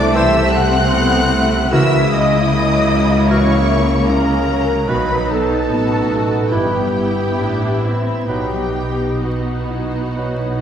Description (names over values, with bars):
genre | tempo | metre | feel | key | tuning
classical, slow romantic movement for symphony orchestra | 63-78 BPM | 4/4 | rubato | unclear | A4 = 440 Hz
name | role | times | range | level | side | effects
clear symphonic violin section | melody | 0.0-10.6 s | E5 to F#6 | -25 LUFS | left 2 dB | none
mellow flute section | second line | 0.0-10.6 s | E4 to F#5 | -23 LUFS | left 1 dB | none
warm symphonic violin section | second line | 0.0-10.6 s | E4 to F#5 | -27 LUFS | left 2 dB | none
clear symphonic viola section | accompaniment | 0.0-10.6 s | F#3 to F#4 | -22 LUFS | right 1 dB | none
warm French horn section | sustained chords | 0.0-10.6 s | A3 to E4 | -22 LUFS | equal | none
concert harp | arpeggios | 0.0-10.6 s | G2 to B5 | -26 LUFS | left 4 dB | none
rich studio double bass section | bass | 0.0-10.6 s | G1 to C#2 | -21 LUFS | equal | none
rich symphonic cello section | bass | 0.0-10.6 s | G2 to C#3 | -22 LUFS | right 1 dB | none
mellow clarinet | second line | 0.1-10.6 s | D#4 to A4 | -27 LUFS | right 3 dB | none
mellow bassoon | accompaniment | 0.1-10.5 s | D#3 to F#3 | -27 LUFS | right 2 dB | none
warm oboe | second line | 0.2-10.5 s | A#4 to C5 | -28 LUFS | right 1 dB | none
room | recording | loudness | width
wet scoring stage reverb, RT60 1.7 s | heard from further back in the room, vinyl crackle | -14 LUFS | side -8 dB against mid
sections
0.0-10.6 A section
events
none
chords
0.0 Am/C; 1.7 F#7/C#; 4.9 B; 6.5 Em/G; 8.3 B